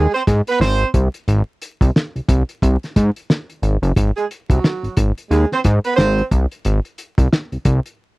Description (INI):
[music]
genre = funk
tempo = 89 BPM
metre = 4/4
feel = swing 60% on 16ths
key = Ab mixolydian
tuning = A4 = 439 Hz
[part]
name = warm horn section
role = second line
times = 0.0-6.2 s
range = Gb3 to C5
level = -18 LUFS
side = right 4 dB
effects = none
[part]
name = fat analog bass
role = bass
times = 0.0-7.8 s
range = Gb1 to Ab2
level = -15 LUFS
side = equal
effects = none
[part]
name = cloth-damped thuddy drum kit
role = drums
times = 0.1-8.0 s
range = hi-hat, kick drum, snare drum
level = -17 LUFS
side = equal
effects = none
[sound]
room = little or no reverb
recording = dry, close 1970s-style studio recording, vinyl crackle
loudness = -15 LUFS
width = side -22 dB against mid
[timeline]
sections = 0.0-8.2 A section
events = break 8.0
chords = 0.0 Ab